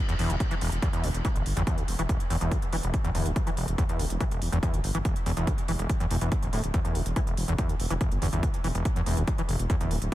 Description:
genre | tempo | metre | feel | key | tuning
driving peak-time techno | 142 BPM | 4/4 | straight | E minor | A4 = 441 Hz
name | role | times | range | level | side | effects
overdriven acid bass | riff | 0.1-10.0 s | E1 to E3 | -30 LUFS | equal | distortion, analog chorus, sidechain pumping, analog delay
electronic hi-hat | drums | 0.1-10.1 s | none | -39 LUFS | right 2 dB | none
dark detuned saw bass | bass | 0.2-10.1 s | D1 to G1 | -29 LUFS | equal | sidechain pumping
electronic kick drum | drums | 0.4-9.8 s | none | -28 LUFS | equal | none
room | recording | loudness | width
light reverb | none | -25 LUFS | side -15 dB against mid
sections
0.0-10.1 A section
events
none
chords
none

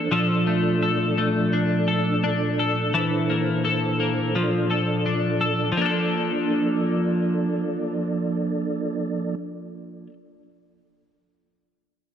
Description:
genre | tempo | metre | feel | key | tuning
dream pop | 85 BPM | 4/4 | straight | Bb lydian | A4 = 442 Hz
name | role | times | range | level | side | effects
mellow tonewheel organ | sustained chords | 0.0-9.4 s | Bb2 to D5 | -25 LUFS | right 3 dB | chorus vibrato, fast rotary speaker
twelve-string electric guitar | arpeggios | 0.0-10.1 s | E3 to A4 | -23 LUFS | left 2 dB | analog chorus, ping-pong delay
room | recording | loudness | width
moderate plate reverb, RT60 3.0 s | dark, warm production | -21 LUFS | side -9 dB against mid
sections
0.0-5.8 A section; 5.8-8.6 B section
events
none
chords
0.1 Bbmaj7; 2.9 C13; 4.3 Bbmaj7

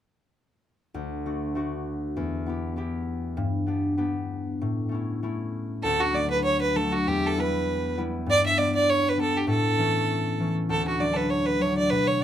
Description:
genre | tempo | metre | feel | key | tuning
celtic folk, Celtic reel | 197 BPM | 4/4 | swing 56% on 8ths | D major | A4 = 440 Hz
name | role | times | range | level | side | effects
concert harp | accompaniment | 0.9-12.2 s | D2 to G4 | -26 LUFS | left 2 dB | none
clear fiddle | melody | 5.8-12.2 s | F#4 to E5 | -24 LUFS | right 2 dB | none
room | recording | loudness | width
moderate small room ambience, RT60 0.5 s | none | -23 LUFS | side -10 dB against mid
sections
1.0-5.8 A section; 5.8-12.2 B section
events
none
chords
1.0 D; 2.2 Em; 3.4 G; 4.6 A; 5.8 D; 7.0 Em; 8.3 G; 9.5 A; 10.7 D

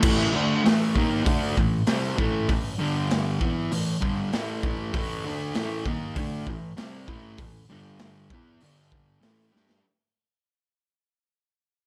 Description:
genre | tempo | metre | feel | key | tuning
garage rock duo or trio | 98 BPM | 4/4 | straight | A minor | A4 = 440 Hz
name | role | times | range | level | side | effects
fuzz guitar | riff | 0.0-9.8 s | G2 to G4 | -28 LUFS | equal | distortion
raw garage drum kit | drums | 0.0-9.8 s | crash cymbal, hi-hat, kick drum, snare drum | -29 LUFS | equal | none
room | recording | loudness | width
moderate club ambience, RT60 0.5 s | none | -26 LUFS | mono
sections
0.0-9.8 A section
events
fade-out 0.0-9.8; drum fill 9.5-9.8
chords
0.0 Am; 2.8 G5; 3.4 Am; 7.7 G5; 8.3 E5; 8.6 G5; 9.2 A5

